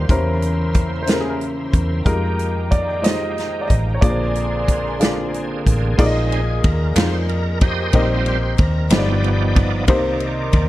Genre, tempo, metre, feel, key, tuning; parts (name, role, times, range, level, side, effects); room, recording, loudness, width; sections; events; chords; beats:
slow gospel; 61 BPM (dotted quarters); 6/8; straight; A4 = 440 Hz
clear grand piano; melody; 0.0-5.3 s; Ab4 to Eb5; -25 LUFS; equal
dark upright piano; accompaniment; 0.0-10.7 s; G2 to Eb5; -23 LUFS; left 2 dB
bright tonewheel organ; sustained chords; 0.0-10.7 s; Db3 to Eb5; -27 LUFS; right 3 dB; slow rotary speaker, overdrive, chorus vibrato
muted studio string section; sustained chords; 0.0-6.0 s; Db4 to C6; -33 LUFS; left 1 dB
vintage muted fingered electric bass; bass; 0.0-10.7 s; G1 to F2; -21 LUFS; equal
natural country drum kit; drums; 0.1-10.7 s; crash cymbal, hi-hat, kick drum, ride cymbal, snare drum; -18 LUFS; equal
group handclap; percussion; 7.0-9.2 s; -29 LUFS; right 5 dB
light reverb, small room ambience; dark, warm production, lossy compression artefacts; -16 LUFS; side -16 dB against mid
0.0-6.0 A section; 6.0-10.7 B section
tonewheel organ solo 6.0-10.7
0.1 C7b9/E; 2.1 Fm11; 4.0 Bb9; 6.0 Bb7sus4; 7.9 Eb6/Bb; 8.9 G7b13; 9.9 Cm7
| 0.09 1.08 | 2.06 3.04 | 4.02 5.00 | 5.98 6.96 | 7.94 8.91 | 9.89